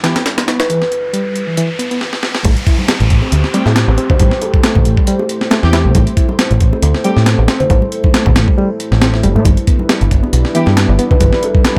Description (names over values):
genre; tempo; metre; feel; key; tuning
breakbeat, breaks; 137 BPM; 4/4; swing 54% on 16ths; A minor; A4 = 440 Hz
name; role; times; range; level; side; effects
dark analog pad; sustained chords; 0.0-11.8 s; G3 to C5; -25 LUFS; equal; chorus, sidechain pumping
bright reed electric piano; riff; 0.0-11.8 s; E3 to E4; -22 LUFS; equal; overdrive, fast tremolo, tube saturation, low-pass filter, delay
dark studio string section; stabs; 0.0-0.1, 3.5-7.1, 10.5-10.6 s; A3 to G4; -23 LUFS; equal; delay
breakbeat sampler-style drum kit; drums; 0.0-11.8 s; hi-hat, kick drum, snare drum; -16 LUFS; equal; high-pass filter on hats, high-pass filter on snare, high-pass filter on kick, high-pass filter on room
riser and downlifter; sound effects; 0.0-6.0 s; none; -28 LUFS; equal; none
kalimba; melody; 0.6-0.8, 4.1-7.8, 11.1-11.8 s; A4 to C5; -23 LUFS; equal; AM radio sound, delay
overdriven picked electric bass; bass; 2.4-11.8 s; G1 to A2; -15 LUFS; equal; none
bongos and congas; percussion; 2.4-11.8 s; none; -24 LUFS; equal; none
room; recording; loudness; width
little or no reverb; none; -13 LUFS; mono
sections
0.0-2.4 A section; 2.4-11.8 B section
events
riser 0.0-2.4; drum fill 2.0-2.4; drop 2.4-11.8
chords
0.0 G6; 2.4 Am7; 9.5 G6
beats
0.26 | 0.70 1.14 1.57 2.01 | 2.45 2.89 3.32 3.76 | 4.20 4.64 5.08 5.51 | 5.95 6.39 6.83 7.27 | 7.70 8.14 8.58 9.02 | 9.46 9.89 10.33 10.77 | 11.21 11.65